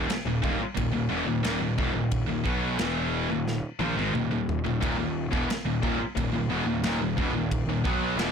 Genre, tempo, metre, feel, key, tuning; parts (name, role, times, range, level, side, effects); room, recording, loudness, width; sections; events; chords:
heavy metal; 89 BPM; 4/4; straight; Eb minor; A4 = 436 Hz
heavy high-gain guitar; riff; 0.0-8.3 s; Eb2 to Cb4; -30 LUFS; left 9 dB; distortion
scooped high-gain guitar; riff; 0.0-8.3 s; Eb2 to Cb4; -31 LUFS; right 11 dB; distortion
fuzz picked electric bass; bass; 0.0-8.3 s; Eb1 to Cb2; -32 LUFS; right 1 dB; overdrive
modern studio drum kit; drums; 0.1-8.3 s; kick drum, ride cymbal, snare drum, toms; -32 LUFS; right 1 dB
distorted electric guitar; riff; 4.8-8.3 s; Eb2 to Cb4; -33 LUFS; right 1 dB; overdrive
light reverb; blown-out, overdriven recording, overdrive; -25 LUFS; side -7 dB against mid
0.0-8.3 A section
drum fill 3.5-4.8
0.0 Ebm